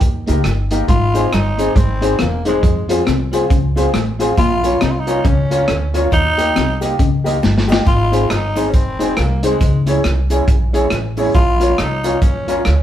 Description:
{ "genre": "ska", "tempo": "138 BPM", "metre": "4/4", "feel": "swing 60% on 8ths", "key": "Ab major", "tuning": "A4 = 441 Hz", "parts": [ { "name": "warm upright piano", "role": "stabs", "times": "0.0-12.6 s", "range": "Eb4 to Eb5", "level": "-21 LUFS", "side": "left 3 dB", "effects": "none" }, { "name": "upright bass", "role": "bass", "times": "0.0-12.8 s", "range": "Fb1 to F2", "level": "-18 LUFS", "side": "equal", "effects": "none" }, { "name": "crunchy breakbeat drum kit", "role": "drums", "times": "0.0-12.8 s", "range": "hi-hat, kick drum, rim click, snare drum", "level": "-18 LUFS", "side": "equal", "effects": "none" }, { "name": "cabasa", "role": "percussion", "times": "0.0-12.8 s", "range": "none", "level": "-43 LUFS", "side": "right 6 dB", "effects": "none" }, { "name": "electric guitar through a small old amp", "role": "accompaniment", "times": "0.3-12.7 s", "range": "Bb3 to Bb4", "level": "-23 LUFS", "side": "right 2 dB", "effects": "none" }, { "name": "growling tenor saxophone", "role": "melody", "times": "0.9-12.8 s", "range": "Ab3 to F4", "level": "-20 LUFS", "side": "equal", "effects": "none" }, { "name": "electric guitar at the edge of break-up", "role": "riff", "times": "0.9-7.6 s", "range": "Fb2 to F3", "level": "-22 LUFS", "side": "left 4 dB", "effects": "none" } ], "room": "moderate studio reverb, RT60 0.9 s", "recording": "band playing live in one room", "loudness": "-13 LUFS", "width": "side -11 dB against mid", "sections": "0.0-7.9 A section; 7.9-12.8 A section", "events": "drum fill 7.4-7.9", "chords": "0.0 Eb; 0.9 Ab; 2.6 Fm; 4.4 Bbm; 6.1 Eb; 7.9 Ab; 9.6 Dbm; 11.4 Bbm", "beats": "0.01 0.45 | 0.89 1.32 1.76 2.19 | 2.63 3.07 3.50 3.94 | 4.38 4.81 5.25 5.69 | 6.12 6.56 6.99 7.43 | 7.87 8.30 8.74 9.17 | 9.61 10.05 10.48 10.92 | 11.35 11.79 12.22 12.66" }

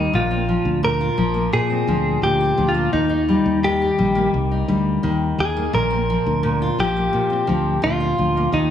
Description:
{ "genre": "pop", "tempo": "86 BPM", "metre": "4/4", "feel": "straight", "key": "Bb mixolydian", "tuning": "A4 = 441 Hz", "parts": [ { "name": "direct-recorded clean electric guitar", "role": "melody", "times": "0.0-8.7 s", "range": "Eb4 to Bb4", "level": "-21 LUFS", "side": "equal", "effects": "plate reverb, tape echo" }, { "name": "fingerpicked steel-string acoustic guitar", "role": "accompaniment", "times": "0.0-8.7 s", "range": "Bb2 to G4", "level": "-21 LUFS", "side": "left 2 dB", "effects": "plate reverb" }, { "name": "fingered electric bass", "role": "bass", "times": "0.0-8.7 s", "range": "Bb1 to Bb2", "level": "-23 LUFS", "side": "equal", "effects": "none" } ], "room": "moderate studio reverb, RT60 0.8 s", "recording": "studio ambience", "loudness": "-17 LUFS", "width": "side -9 dB against mid", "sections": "0.0-8.7 A section", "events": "none", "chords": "0.1 Bbadd9; 2.9 Eb; 5.7 Bbadd9", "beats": "| 0.13 0.83 1.53 2.23 | 2.93 3.63 4.33 5.03 | 5.73 6.43 7.13 7.83 | 8.53" }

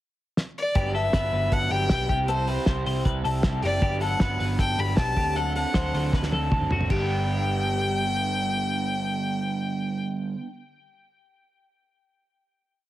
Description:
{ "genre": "jangly indie pop", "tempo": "156 BPM", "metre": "4/4", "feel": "straight", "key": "G major", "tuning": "A4 = 439 Hz", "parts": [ { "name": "cloth-damped thuddy drum kit", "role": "drums", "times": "0.4-7.0 s", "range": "crash cymbal, hi-hat, kick drum, snare drum, toms", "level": "-26 LUFS", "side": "equal", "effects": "none" }, { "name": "warm violin", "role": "melody", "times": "0.6-10.0 s", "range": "C5 to B5", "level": "-28 LUFS", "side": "left 2 dB", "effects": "tape echo" }, { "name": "crunchy overdriven guitar", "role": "accompaniment", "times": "0.8-10.5 s", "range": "G2 to B4", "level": "-30 LUFS", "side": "right 5 dB", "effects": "none" }, { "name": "twelve-string electric guitar", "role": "arpeggios", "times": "0.8-8.0 s", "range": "F#4 to C5", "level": "-30 LUFS", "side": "left 3 dB", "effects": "analog chorus, tape echo" }, { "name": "vintage muted picked electric bass", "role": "bass", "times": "0.8-10.0 s", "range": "F#1 to D2", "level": "-28 LUFS", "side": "equal", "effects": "none" } ], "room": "moderate club reverb, RT60 0.8 s", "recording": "heavily compressed radio sound", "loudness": "-23 LUFS", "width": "side -14 dB against mid", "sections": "0.0-0.8 pickup bar; 0.8-6.9 verse; 6.9-10.0 final chord", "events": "drum fill 0.4-0.8, 6.1-6.9", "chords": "0.0 N.C.; 0.8 Gmaj7; 2.1 C; 3.8 Gmaj7; 5.2 D7; 6.9 G", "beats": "0.37 | 0.76 1.14 1.52 1.90 | 2.29 2.67 3.05 3.44 | 3.82 4.21 4.59 4.97 | 5.36 5.74 6.13 6.51 | 6.90 7.29 7.67 8.05 | 8.44 8.82 9.21 9.59" }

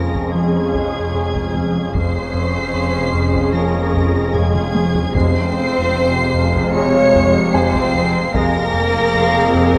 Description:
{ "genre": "cinematic, suspense film score", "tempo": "75 BPM", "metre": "4/4", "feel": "straight", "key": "F minor", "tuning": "A4 = 436 Hz", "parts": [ { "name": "muted symphonic violin section", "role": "melody", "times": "0.0-9.8 s", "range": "Ab6 to Db7", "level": "-28 LUFS", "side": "equal", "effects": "none" }, { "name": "muted symphonic violin section", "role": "second line", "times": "0.0-9.8 s", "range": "Ab4 to Db5", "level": "-26 LUFS", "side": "equal", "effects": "none" }, { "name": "muted symphonic viola section", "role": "accompaniment", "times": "0.0-9.8 s", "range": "C3 to Ab4", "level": "-25 LUFS", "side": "equal", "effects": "none" }, { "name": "clear French horn section", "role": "sustained chords", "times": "0.0-9.8 s", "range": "Ab3 to Db5", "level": "-24 LUFS", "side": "equal", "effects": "none" }, { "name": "deep dark ambient pad", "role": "sustained chords", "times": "0.0-9.8 s", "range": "Db4 to F5", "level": "-33 LUFS", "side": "equal", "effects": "none" }, { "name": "warm trombone section", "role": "sustained chords", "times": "0.0-8.6 s", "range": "C3 to Ab3", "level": "-30 LUFS", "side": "equal", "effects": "none" }, { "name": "round analog bass", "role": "riff", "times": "0.0-9.8 s", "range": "F2 to F3", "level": "-24 LUFS", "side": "equal", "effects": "none" }, { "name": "muted symphonic cello section", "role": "bass", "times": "0.0-9.8 s", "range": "F2", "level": "-26 LUFS", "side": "equal", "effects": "none" }, { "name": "muted symphonic double bass section", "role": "bass", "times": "0.0-9.8 s", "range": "F1", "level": "-27 LUFS", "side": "equal", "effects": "none" }, { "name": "overtone-sweeping drone", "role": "drone", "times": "0.0-9.8 s", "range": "F2", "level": "-29 LUFS", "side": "equal", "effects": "none" }, { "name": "solo taiko drums", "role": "drums", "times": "0.1-9.8 s", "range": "none", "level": "-28 LUFS", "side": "equal", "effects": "none" }, { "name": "timpani", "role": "percussion", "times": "5.1-6.3 s", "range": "F2", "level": "-26 LUFS", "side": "equal", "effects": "none" }, { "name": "muted symphonic violin section", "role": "texture", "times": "5.1-9.8 s", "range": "F5 to Ab5", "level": "-32 LUFS", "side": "equal", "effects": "none" }, { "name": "felt-muted upright piano", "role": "texture", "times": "7.5-9.8 s", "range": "Ab5", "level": "-30 LUFS", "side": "equal", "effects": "none" } ], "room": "moderate scoring stage reverb, RT60 1.6 s", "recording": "none", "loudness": "-17 LUFS", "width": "mono", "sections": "0.0-9.8 A section", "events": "drum fill 4.3-5.1", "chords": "0.0 Db/F; 5.1 Fm", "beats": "0.34 1.14 | 1.94 2.74 3.54 4.34 | 5.14 5.94 6.74 7.54 | 8.34 9.14" }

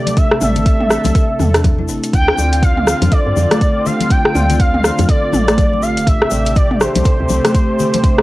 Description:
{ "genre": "afro house", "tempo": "122 BPM", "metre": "4/4", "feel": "swing 60% on 16ths", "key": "D minor", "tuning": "A4 = 440 Hz", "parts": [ { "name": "expressive portamento lead", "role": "melody", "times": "0.0-8.2 s", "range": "C5 to G5", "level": "-19 LUFS", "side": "equal", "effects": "ensemble chorus, vintage 12-bit sampler grit" }, { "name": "warm analog pad", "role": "sustained chords", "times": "0.0-8.2 s", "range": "C3 to A4", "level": "-23 LUFS", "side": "equal", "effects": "chorus, sidechain pumping, cassette tape" }, { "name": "kalimba", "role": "arpeggios", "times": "0.0-8.2 s", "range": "A3 to D5", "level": "-22 LUFS", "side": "right 1 dB", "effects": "sidechain pumping, cassette tape, analog delay" }, { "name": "deep house drum kit", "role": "drums", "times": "0.1-8.2 s", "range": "hi-hat, rim click, toms", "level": "-16 LUFS", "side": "equal", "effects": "overdrive" }, { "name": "congas", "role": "percussion", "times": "0.1-8.0 s", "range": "none", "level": "-22 LUFS", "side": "left 6 dB", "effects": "none" }, { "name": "tube shaker", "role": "percussion", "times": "0.1-8.2 s", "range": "none", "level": "-31 LUFS", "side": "left 8 dB", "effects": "none" }, { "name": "electronic kick drum", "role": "drums", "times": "0.2-8.2 s", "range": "none", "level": "-14 LUFS", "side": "equal", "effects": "none" }, { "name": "woody FM bass", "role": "bass", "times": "0.4-7.4 s", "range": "D1 to G2", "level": "-18 LUFS", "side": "equal", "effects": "sidechain pumping" } ], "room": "light reverb", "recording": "home recording on cassette", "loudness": "-11 LUFS", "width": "side -18 dB against mid", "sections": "0.0-8.2 A section", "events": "none", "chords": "0.0 Am; 2.1 Dm7; 6.1 Am7", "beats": "| 0.17 0.66 1.15 1.64 | 2.14 2.63 3.12 3.61 | 4.10 4.59 5.09 5.58 | 6.07 6.56 7.05 7.55 | 8.04" }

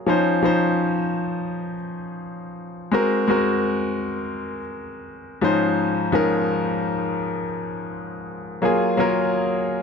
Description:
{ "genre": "soul", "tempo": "84 BPM", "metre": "4/4", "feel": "swing 54% on 16ths", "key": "Db major", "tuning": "A4 = 440 Hz", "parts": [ { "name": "bright concert grand piano", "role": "solo", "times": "0.0-9.8 s", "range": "Ab2 to C5", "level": "-20 LUFS", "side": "left 1 dB", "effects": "none" } ], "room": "light reverb", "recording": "none", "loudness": "-20 LUFS", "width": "side -6 dB against mid", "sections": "0.0-9.8 A section", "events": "none", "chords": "0.1 Dbmaj9; 2.9 Ab9; 5.4 Dbmaj9/Ab; 8.6 Gbmaj9", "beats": "| 0.08 0.80 1.51 2.22 | 2.94 3.65 4.36 5.07 | 5.79 6.50 7.21 7.92 | 8.64 9.35" }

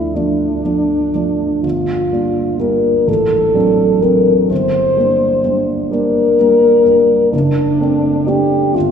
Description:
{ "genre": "classical, romantic duo for French horn and grand piano", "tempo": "42 BPM (dotted quarters)", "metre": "6/8", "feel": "rubato", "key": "D minor", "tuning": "A4 = 444 Hz", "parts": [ { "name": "mellow French horn", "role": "melody", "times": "0.0-8.9 s", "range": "D4 to C5", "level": "-13 LUFS", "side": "left 1 dB", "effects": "none" }, { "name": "dark baby grand piano", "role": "accompaniment", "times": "0.0-8.9 s", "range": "F#1 to D4", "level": "-16 LUFS", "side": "right 1 dB", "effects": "none" } ], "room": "wet church reverb, RT60 3.1 s", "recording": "recorded in a church or concert hall", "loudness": "-11 LUFS", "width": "side -7 dB against mid", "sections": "0.0-8.9 A section", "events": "none", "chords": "0.0 Dm; 1.6 Gm7; 3.1 D7/A; 4.5 Gm; 7.3 D7/F#", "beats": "0.16 | 1.64 3.08 | 4.50 5.92 | 7.33 8.75" }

